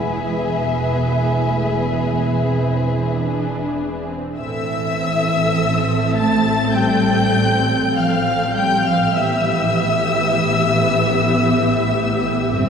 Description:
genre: classical, slow romantic movement for string orchestra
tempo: 44-54 BPM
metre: 4/4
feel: rubato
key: A minor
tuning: A4 = 441 Hz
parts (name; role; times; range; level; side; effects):
- warm symphonic violin section; melody; 0.0-12.7 s; E5 to A6; -24 LUFS; left 4 dB; none
- warm symphonic violin section; second line; 0.0-12.7 s; G#4 to A5; -22 LUFS; left 1 dB; none
- warm symphonic viola section; accompaniment; 0.0-12.7 s; G#3 to A4; -23 LUFS; equal; none
- dark symphonic cello section; bass; 0.0-12.7 s; E2 to A3; -23 LUFS; right 1 dB; none
- warm symphonic double bass section; bass; 0.0-12.7 s; E1 to A1; -23 LUFS; right 2 dB; none
room: wet cathedral reverb, RT60 4.9 s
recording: heard from further back in the room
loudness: -16 LUFS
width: side -6 dB against mid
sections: 0.0-4.4 A section; 4.4-12.7 B section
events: none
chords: 0.0 E; 4.4 Am; 9.1 Em/A

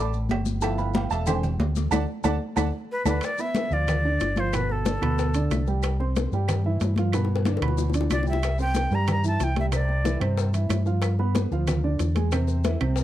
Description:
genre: Afro-Cuban jazz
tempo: 185 BPM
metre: 4/4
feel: straight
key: G mixolydian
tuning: A4 = 440 Hz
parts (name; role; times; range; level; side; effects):
- warm baby grand piano; accompaniment; 0.0-13.0 s; B2 to D6; -29 LUFS; right 4 dB; none
- fingered electric bass; bass; 0.0-13.0 s; E1 to G2; -25 LUFS; equal; none
- congas; percussion; 0.1-13.0 s; none; -31 LUFS; left 2 dB; none
- maracas; percussion; 0.1-13.0 s; none; -42 LUFS; left 17 dB; none
- claves; percussion; 0.3-13.0 s; none; -38 LUFS; right 17 dB; none
- cowbell and bongos; percussion; 0.3-13.0 s; none; -33 LUFS; left 10 dB; none
- timbales and agogo bells; percussion; 0.3-13.0 s; none; -34 LUFS; right 5 dB; none
- breathy bright jazz flute; melody; 2.9-5.7, 8.1-10.2 s; A4 to Bb5; -28 LUFS; equal; none
room: studio reverb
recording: dry, close 1970s-style studio recording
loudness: -22 LUFS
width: side -13 dB against mid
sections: 0.0-3.2 A section; 3.2-13.0 B section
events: grand piano solo 0.0-3.2; band accent 1.9-3.2; drum fill 2.6-3.2, 7.1-8.4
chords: 0.0 D5; 0.6 G13; 1.3 E7alt; 1.9 D; 3.2 G9; 5.8 C; 7.1 G; 8.4 C; 11.0 G6; 12.3 Am (rootless)

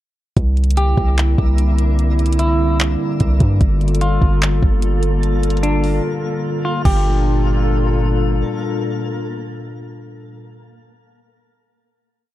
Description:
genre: hip hop, atmospheric cloud-rap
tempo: 148 BPM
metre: 4/4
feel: half-time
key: G dorian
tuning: A4 = 444 Hz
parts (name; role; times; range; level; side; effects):
- dark analog pad; sustained chords; 0.4-10.4 s; Bb2 to A4; -21 LUFS; left 2 dB; lush chorus, sidechain pumping
- long sustained 808-style bass; bass; 0.4-8.4 s; G1 to G2; -16 LUFS; equal; none
- smooth R&B drum kit; drums; 0.4-6.9 s; crash cymbal, handclaps, hi-hat, kick drum; -18 LUFS; equal; none
- twinkling granular texture; texture; 0.9-10.4 s; Bb3 to F5; -31 LUFS; equal; built-in reverb
- semi-hollow electric guitar; melody; 0.8-8.0 s; D4 to G4; -24 LUFS; equal; low-pass filter, ping-pong delay
room: little or no reverb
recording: dark, warm production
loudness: -14 LUFS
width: side -14 dB against mid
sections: 0.4-6.9 verse; 6.9-10.1 final chord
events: break 6.0-6.9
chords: 0.4 C9; 3.6 Gm9

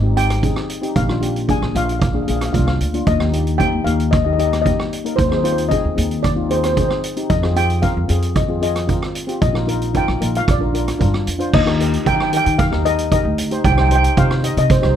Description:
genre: calypso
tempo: 114 BPM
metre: 4/4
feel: straight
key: Eb major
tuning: A4 = 439 Hz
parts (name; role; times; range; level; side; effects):
- steel pan; melody; 0.0-15.0 s; C5 to Ab5; -21 LUFS; left 1 dB; plate reverb
- steel pan; accompaniment; 0.0-14.9 s; Bb3 to Eb5; -22 LUFS; left 3 dB; none
- upright bass; bass; 0.0-15.0 s; Ab1 to Eb3; -19 LUFS; equal; none
- street-band drum kit; drums; 0.2-15.0 s; crash cymbal, hi-hat, kick drum, rim click; -20 LUFS; right 2 dB; none
room: light reverb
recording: none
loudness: -15 LUFS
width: side -9 dB against mid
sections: 0.0-11.5 A section; 11.5-15.0 B section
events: none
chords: 0.0 Abmaj7; 1.0 Bb7; 3.1 Eb; 5.2 Ab/Eb; 7.3 Fm7; 9.4 Bbsus4; 10.5 Bb; 11.5 Ebmaj7; 13.6 Cm

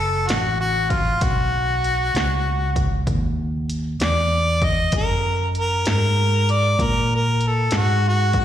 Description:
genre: slow blues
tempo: 64 BPM (dotted quarters)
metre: 12/8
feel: straight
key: unclear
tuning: A4 = 438 Hz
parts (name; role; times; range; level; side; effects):
- bright harmonica; melody; 0.0-8.4 s; E#4 to D#5; -21 LUFS; equal; overdrive, slapback echo, digital delay
- fingered electric bass; bass; 0.0-8.4 s; F#1 to A#2; -21 LUFS; equal; none
- punchy analog drum machine; drums; 0.3-8.4 s; hi-hat, kick drum, snare drum; -24 LUFS; equal; slapback echo
room: little or no reverb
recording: live gig heard through the venue's PA, recital hall reverb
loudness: -18 LUFS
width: side -10 dB against mid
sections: 0.0-8.4 A section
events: none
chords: 0.0 B7; 4.9 F#

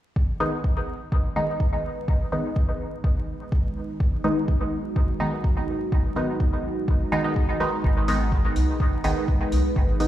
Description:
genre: dub techno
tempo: 125 BPM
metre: 4/4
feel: straight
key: G# minor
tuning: A4 = 440 Hz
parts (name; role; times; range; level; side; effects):
- deep dark ambient pad; sustained chords; 1.0-10.1 s; G#3 to B4; -31 LUFS; right 2 dB; chorus, built-in reverb, sidechain pumping
- electronic kick drum; drums; 0.2-9.9 s; none; -23 LUFS; equal; overdrive
- filtered dub chord stab; stabs; 0.4-10.1 s; D#3 to D#4; -27 LUFS; equal; chorus, phaser, vintage 12-bit sampler grit, dub echo
- soft dub sub bass; bass; 7.8-10.1 s; G#1 to B1; -23 LUFS; equal; sidechain pumping
- electronic hi-hat; drums; 8.1-10.1 s; none; -42 LUFS; left 2 dB; overdrive
room: light reverb, digital ambience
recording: played on a big sound system in a bare room, stone room reverb, vinyl crackle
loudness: -22 LUFS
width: side -13 dB against mid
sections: 0.2-10.1 A section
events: none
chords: 0.2 G#m

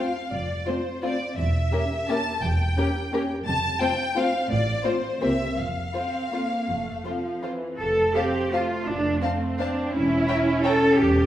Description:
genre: classical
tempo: 152-190 BPM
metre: 3/4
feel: rubato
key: F major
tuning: A4 = 441 Hz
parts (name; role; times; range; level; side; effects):
- rich symphonic violin section; melody; 0.0-10.7 s; C5 to Bb5; -29 LUFS; left 2 dB; none
- dark symphonic violin section; second line; 0.0-10.7 s; F4 to G5; -31 LUFS; left 2 dB; none
- rich symphonic viola section; accompaniment; 0.0-11.3 s; E3 to C#4; -28 LUFS; right 1 dB; none
- dark French horn section; sustained chords; 0.0-7.6 s; C4 to Bb4; -32 LUFS; left 1 dB; none
- rich symphonic cello section; bass; 0.3-11.3 s; E2 to A4; -25 LUFS; right 1 dB; none
- rich symphonic double bass section; bass; 0.3-11.3 s; E1 to C2; -28 LUFS; right 1 dB; none
room: wet recital hall reverb, RT60 1.5 s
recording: heard from further back in the room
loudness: -22 LUFS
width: side -12 dB against mid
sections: 0.0-7.8 A section; 7.8-11.3 A section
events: none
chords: 0.0 F5; 1.4 Edim7; 3.5 F; 4.5 F/A; 5.2 C7; 5.6 F; 9.9 Em6

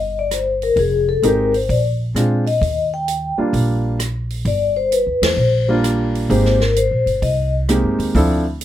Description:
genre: jazz, small-group swing and bop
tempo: 130 BPM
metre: 4/4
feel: swing 67% on 8ths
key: Eb major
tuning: A4 = 440 Hz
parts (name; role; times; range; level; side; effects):
- vibraphone with soft mallets; melody; 0.0-7.5 s; Ab4 to G5; -18 LUFS; left 4 dB; none
- upright bass; bass; 0.0-8.6 s; F1 to Bb2; -20 LUFS; right 1 dB; none
- swinging big-band drum kit; drums; 0.3-8.6 s; hi-hat, kick drum, ride cymbal, rim click, snare drum; -26 LUFS; right 1 dB; none
- warm baby grand piano; accompaniment; 1.2-8.4 s; F3 to A4; -18 LUFS; right 1 dB; none
room: light reverb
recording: none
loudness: -15 LUFS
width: side -12 dB against mid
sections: 0.0-6.3 A section; 6.3-8.6 B section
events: band accent 5.1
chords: 0.0 Cm; 0.8 Fm7; 1.7 Bb7; 2.6 Ebmaj9; 6.3 Abmaj9; 8.1 Dm9

